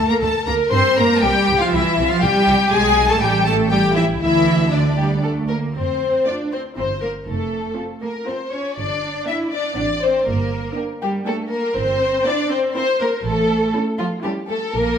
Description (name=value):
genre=quick classical-period movement for string orchestra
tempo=120 BPM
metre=3/4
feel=straight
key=D minor, F major from 5.8 s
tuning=A4 = 442 Hz
part: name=warm symphonic violin section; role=melody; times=0.0-14.6 s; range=D5 to C6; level=-22 LUFS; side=left 4 dB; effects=none
part: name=warm studio violin section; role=second line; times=0.0-15.0 s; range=D4 to E5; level=-21 LUFS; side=left 3 dB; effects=none
part: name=rich chamber viola section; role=accompaniment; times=0.0-14.6 s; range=A3 to C5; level=-24 LUFS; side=right 1 dB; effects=none
part: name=rich symphonic cello section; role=bass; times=0.0-15.0 s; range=D3 to E4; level=-23 LUFS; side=right 2 dB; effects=none
part: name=rich symphonic double bass section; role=bass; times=0.0-15.0 s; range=F1 to G2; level=-23 LUFS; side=right 3 dB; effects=none
room=wet recital hall reverb, RT60 1.5 s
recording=none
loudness=-16 LUFS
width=side -8 dB against mid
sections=0.0-5.8 A section; 5.8-15.0 B section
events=none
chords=0.0 D5; 0.7 Gm; 1.2 C; 2.7 G#m/B; 3.2 Gsus2/A; 3.7 A5; 4.2 D5; 5.8 F; 6.8 C7/G; 7.3 F; 8.8 Gm; 9.8 D7/A; 10.3 Gm; 11.8 Edim/G; 13.2 A